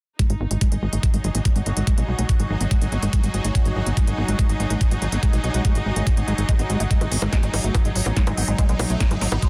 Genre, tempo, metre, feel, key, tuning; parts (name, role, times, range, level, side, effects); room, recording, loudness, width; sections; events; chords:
psychedelic trance; 143 BPM; 4/4; straight; G# phrygian; A4 = 441 Hz
evolving wavetable pad; sustained chords; 0.9-9.5 s; F#3 to F#4; -33 LUFS; equal; phaser, built-in reverb, sidechain pumping
liquid acid bass; riff; 0.2-9.5 s; F#3 to B3; -32 LUFS; equal; chorus, sidechain pumping, tape echo
electronic kick drum; drums; 0.2-9.5 s; -22 LUFS; equal
techno drum kit; drums; 0.2-9.5 s; bongos, hi-hat, snare drum; -31 LUFS; equal
clear studio string section; texture; 0.2-9.5 s; D#4 to D#5; -34 LUFS; equal; sidechain pumping
tight sequencer bass; bass; 0.3-9.4 s; G#1 to B1; -26 LUFS; equal
little or no reverb; dense, heavily limited modern master; -21 LUFS; mono
0.2-9.5 A section
filter sweep on acid bass 0.2-9.5
0.2 G#5